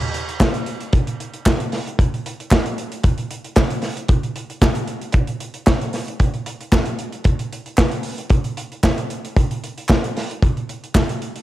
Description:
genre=disco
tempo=114 BPM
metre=4/4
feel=straight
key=none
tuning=none
part: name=modern studio drum kit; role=drums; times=0.0-11.4 s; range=hi-hat, kick drum, snare drum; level=-18 LUFS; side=equal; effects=cassette tape
part: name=group handclap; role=percussion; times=0.4-11.1 s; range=none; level=-30 LUFS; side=right 1 dB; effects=none
room=light reverb, studio reverb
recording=home recording on cassette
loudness=-18 LUFS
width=side -15 dB against mid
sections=0.0-11.4 A section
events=none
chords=none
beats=0.40 0.93 1.46 | 1.98 2.51 3.04 3.56 | 4.09 4.62 5.15 5.67 | 6.20 6.73 7.26 7.78 | 8.31 8.84 9.37 9.89 | 10.42 10.95

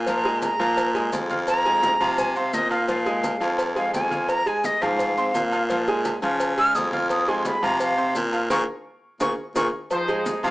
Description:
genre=latin, salsa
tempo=171 BPM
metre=4/4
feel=straight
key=F minor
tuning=A4 = 440 Hz
part: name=bright silver concert flute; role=melody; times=0.0-9.7 s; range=Eb5 to F6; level=-23 LUFS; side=equal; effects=plate reverb
part: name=bright grand piano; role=accompaniment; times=0.0-10.5 s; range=F3 to F6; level=-27 LUFS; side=equal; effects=none
part: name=raspy baritone saxophone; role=bass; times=0.0-10.5 s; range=F2 to Db3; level=-26 LUFS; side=equal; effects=none
part: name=congas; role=percussion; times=0.1-10.5 s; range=none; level=-36 LUFS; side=left 1 dB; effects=none
part: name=cowbell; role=percussion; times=0.1-10.5 s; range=none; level=-32 LUFS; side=left 1 dB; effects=none
part: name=maracas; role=percussion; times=0.1-10.5 s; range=none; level=-42 LUFS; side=left 2 dB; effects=none
part: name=agogo bells and timbales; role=percussion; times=0.2-10.5 s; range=none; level=-34 LUFS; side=right 2 dB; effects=none
part: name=bright trumpet section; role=melody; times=9.9-10.5 s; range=Eb4 to F5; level=-27 LUFS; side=left 1 dB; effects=plate reverb
part: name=bright trombone section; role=second line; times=9.9-10.3 s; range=F3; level=-30 LUFS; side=equal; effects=none
room=moderate studio reverb, RT60 0.8 s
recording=small speaker sound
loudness=-20 LUFS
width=side -19 dB against mid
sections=0.0-9.9 A section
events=flute solo 0.0-9.9; band accent 8.5-9.9; drum fill 9.2-9.9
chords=0.1 Bb5; 1.5 Fm; 2.9 Bb5; 4.3 Fm; 5.7 Bbm7; 7.1 Fm; 8.5 Bbm7; 9.9 Fm7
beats=| 0.07 0.42 0.77 1.12 | 1.48 1.83 2.18 2.53 | 2.88 3.24 3.59 3.94 | 4.29 4.64 4.99 5.34 | 5.70 6.05 6.40 6.75 | 7.10 7.45 7.80 8.15 | 8.51 8.86 9.21 9.56 | 9.91 10.26

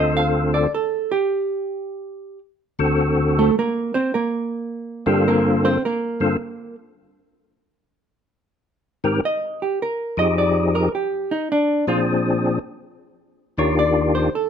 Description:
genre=jazz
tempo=106 BPM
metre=4/4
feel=swing 68% on 8ths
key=G minor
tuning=A4 = 440 Hz
part: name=percussive tonewheel organ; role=melody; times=0.0-14.3 s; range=D2 to Bb4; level=-19 LUFS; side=left 2 dB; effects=slow rotary speaker, overdrive, chorus vibrato
part: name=hollow-body jazz guitar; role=accompaniment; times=0.0-14.5 s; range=G3 to F5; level=-21 LUFS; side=right 2 dB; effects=none
room=light reverb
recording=dark, warm production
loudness=-18 LUFS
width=side -8 dB against mid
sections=0.0-8.1 A section; 8.1-14.5 A section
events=hollow-body jazz guitar solo 0.0-14.5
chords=0.0 Dm7; 1.3 N.C.; 2.4 D7; 3.5 Gm11; 7.0 N.C.; 8.1 Abmaj7(no3); 10.4 Fm9; 11.5 Bb9; 12.6 Ebmaj9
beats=0.14 0.71 | 1.28 1.84 2.41 2.98 | 3.55 4.12 4.68 5.25 | 5.82 6.38 6.95 7.52 | 8.09 8.65 9.22 9.79 | 10.36 10.93 11.49 12.06 | 12.63 13.20 13.76 14.33

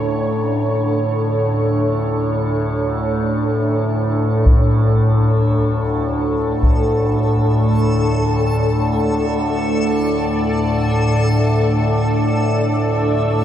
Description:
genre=dark ambient drone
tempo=free time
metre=none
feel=none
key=unclear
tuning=A4 = 440 Hz
part: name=sweeping resonant pad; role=sustained chords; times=0.0-13.4 s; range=D4 to D5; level=-20 LUFS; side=equal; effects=chorus, shimmer reverb
part: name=overtone-sweeping drone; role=drone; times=0.0-13.4 s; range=D2 to A2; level=-17 LUFS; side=equal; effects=chorus, built-in reverb, phaser
part: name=solo taiko drums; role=percussion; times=4.5-6.9 s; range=none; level=-17 LUFS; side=equal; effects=low-pass filter on perc
part: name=backwards swelling texture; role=texture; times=5.5-13.4 s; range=A3 to A4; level=-24 LUFS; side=equal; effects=built-in reverb, shimmer reverb
room=wet huge ambient reverb, RT60 8.0 s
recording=dark, warm production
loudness=-15 LUFS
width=side -10 dB against mid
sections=0.0-13.4 A section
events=none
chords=0.0 D5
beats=free time

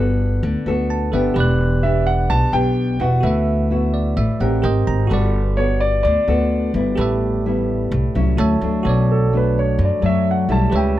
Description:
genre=bossa nova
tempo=128 BPM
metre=4/4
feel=straight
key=unclear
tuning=A4 = 441 Hz
part: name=bell-like tine electric piano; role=accompaniment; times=0.0-11.0 s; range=F#4 to F#6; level=-25 LUFS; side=right 4 dB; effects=none
part: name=nylon-string guitar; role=accompaniment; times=0.0-11.0 s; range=F#2 to Bb4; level=-22 LUFS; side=left 2 dB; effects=none
part: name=upright bass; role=bass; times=0.0-11.0 s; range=E1 to F#2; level=-19 LUFS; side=equal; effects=none
part: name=warm concert grand piano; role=melody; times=1.8-11.0 s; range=A4 to A5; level=-22 LUFS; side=right 1 dB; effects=none
room=light reverb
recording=dark, warm production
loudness=-16 LUFS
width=side -14 dB against mid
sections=0.0-8.8 A section; 8.8-11.0 B section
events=tine electric piano fill 0.7-1.4, 3.7-5.1, 8.1-8.8; grand piano solo 8.8-11.0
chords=0.0 Gmaj9; 1.4 Em7; 3.2 D69; 4.6 G#maj9; 5.1 Gmaj9; 7.0 Am11; 8.4 Dmaj9; 8.8 Bm7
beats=0.43 0.90 | 1.36 1.83 2.30 2.76 | 3.23 3.70 4.17 4.63 | 5.10 5.57 6.04 6.51 | 6.97 7.44 7.91 8.38 | 8.85 9.32 9.78 10.25 | 10.72

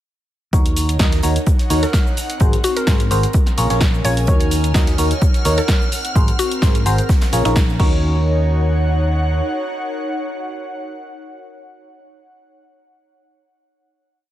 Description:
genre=piano house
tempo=128 BPM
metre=4/4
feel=swing 54% on 16ths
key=Eb dorian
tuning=A4 = 439 Hz
part: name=barking FM electric piano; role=riff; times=0.5-12.0 s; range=Eb3 to Eb5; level=-23 LUFS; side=equal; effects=phaser, sidechain pumping, tape echo
part: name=fingered electric bass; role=bass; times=0.5-9.4 s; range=Ab1 to Ab2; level=-18 LUFS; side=equal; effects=tube saturation, sidechain pumping
part: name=electronic kick drum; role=drums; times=0.5-7.9 s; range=none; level=-16 LUFS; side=equal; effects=overdrive
part: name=gated 80s drum kit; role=drums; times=0.5-7.7 s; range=hi-hat, snare drum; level=-33 LUFS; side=right 3 dB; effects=sidechain pumping on hats, high-pass filter on hats, high-pass filter on snare, high-pass filter on room
part: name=punchy analog drum machine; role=drums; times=0.5-7.9 s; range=crash cymbal, hi-hat, shaker, snare drum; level=-24 LUFS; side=equal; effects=overdrive
part: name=airy breathy pad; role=texture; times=0.7-12.4 s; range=C4 to Ab5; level=-27 LUFS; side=equal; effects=chorus, sidechain pumping
part: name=mallet-like synth pluck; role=melody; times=1.8-7.8 s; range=Eb4 to Db5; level=-25 LUFS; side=left 1 dB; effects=chorus, tape echo
part: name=string machine, violins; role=sustained chords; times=4.3-7.8 s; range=F6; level=-30 LUFS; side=equal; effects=ensemble chorus, sidechain pumping
room=light reverb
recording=none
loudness=-14 LUFS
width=side -13 dB against mid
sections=0.5-8.0 drop; 8.0-11.8 final note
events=drop 0.5-8.0; band accent 7.6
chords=0.5 Ebm7; 2.2 Ab9; 3.3 Bbm7; 4.3 Ebm7; 5.9 Ab9; 7.1 Bbm7; 7.8 Ebm7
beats=| 0.53 1.00 1.47 1.94 | 2.41 2.87 3.34 3.81 | 4.28 4.75 5.22 5.69 | 6.16 6.62 7.09 7.56 | 8.03 8.50 8.97 9.44 | 9.91 10.37 10.84 11.31

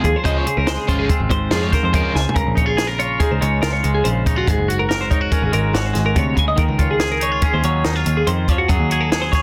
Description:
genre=math rock and midwest emo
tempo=142 BPM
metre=5/4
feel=straight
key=Db major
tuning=A4 = 441 Hz
part: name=twangy electric guitar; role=accompaniment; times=0.0-9.4 s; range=Ab2 to C5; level=-25 LUFS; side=equal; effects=none
part: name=twelve-string electric guitar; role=arpeggios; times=0.0-9.4 s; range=Gb4 to Ab5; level=-24 LUFS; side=equal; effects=none
part: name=overdriven electric guitar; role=riff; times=0.0-2.2 s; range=Db3 to Db4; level=-27 LUFS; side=equal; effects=none
part: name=picked electric bass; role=bass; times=0.0-9.4 s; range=Gb1 to Gb2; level=-24 LUFS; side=equal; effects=none
part: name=compact cocktail drum kit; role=drums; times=0.0-9.4 s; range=hi-hat, kick drum, snare drum, toms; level=-22 LUFS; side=equal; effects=none
room=light reverb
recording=dense, heavily limited modern master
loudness=-18 LUFS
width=mono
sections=0.0-2.4 A section; 2.4-9.4 B section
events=drum fill 2.2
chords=0.3 Dbmaj7; 2.4 Db69; 4.5 Ab9sus4; 6.6 Ebm11; 8.7 Gbmadd9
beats=| 0.26 0.68 1.10 1.52 1.94 | 2.36 2.79 3.21 3.63 4.05 | 4.47 4.89 5.32 5.74 6.16 | 6.58 7.00 7.42 7.84 8.27 | 8.69 9.11

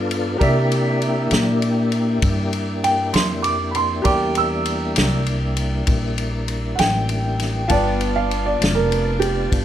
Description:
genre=slow blues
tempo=66 BPM (dotted quarters)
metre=12/8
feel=straight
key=unclear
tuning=A4 = 438 Hz
part: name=bright grand piano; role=accompaniment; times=0.0-9.6 s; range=B3 to A5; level=-26 LUFS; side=right 1 dB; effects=none
part: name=tonewheel organ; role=sustained chords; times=0.0-9.6 s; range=G3 to A5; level=-25 LUFS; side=left 2 dB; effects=slow rotary speaker, chorus vibrato
part: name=upright bass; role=bass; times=0.0-9.6 s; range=F1 to C3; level=-22 LUFS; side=equal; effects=none
part: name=vintage drum kit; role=drums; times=0.1-9.6 s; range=kick drum, ride cymbal, snare drum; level=-24 LUFS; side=left 1 dB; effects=none
part: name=dark upright piano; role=second line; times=2.8-9.6 s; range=G4 to E6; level=-22 LUFS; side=right 3 dB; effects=none
room=moderate small room reverb, RT60 0.5 s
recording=none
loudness=-17 LUFS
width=side -11 dB against mid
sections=0.0-9.6 A section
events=upright piano solo 0.0-9.6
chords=0.4 C7; 7.7 G7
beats=| 0.41 1.32 2.23 3.15 | 4.06 4.97 5.88 6.79 | 7.70 8.60 9.51

